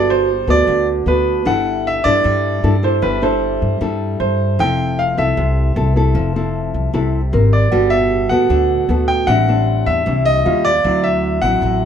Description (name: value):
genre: bossa nova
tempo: 154 BPM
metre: 4/4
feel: straight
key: G major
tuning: A4 = 441 Hz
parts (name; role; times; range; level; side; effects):
- bright grand piano; melody; 0.0-11.9 s; B4 to G5; -18 LUFS; equal; none
- nylon-string guitar; accompaniment; 0.0-11.9 s; A2 to Bb4; -18 LUFS; equal; none
- upright bass; bass; 0.0-11.9 s; F1 to G2; -18 LUFS; equal; none
- mellow tine electric piano; accompaniment; 7.7-11.0 s; F5 to F#5; -27 LUFS; right 8 dB; slow stereo tremolo
room: moderate large studio reverb, RT60 0.9 s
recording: minimal, uncompressed stereo recording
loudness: -14 LUFS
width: side -8 dB against mid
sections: 0.0-11.9 A section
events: none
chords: 0.0 Gmaj9; 1.5 C69/G; 4.6 Fmaj7; 7.3 Abmaj9; 7.7 Gmaj9; 9.3 Am7; 10.5 Eb9; 10.8 D9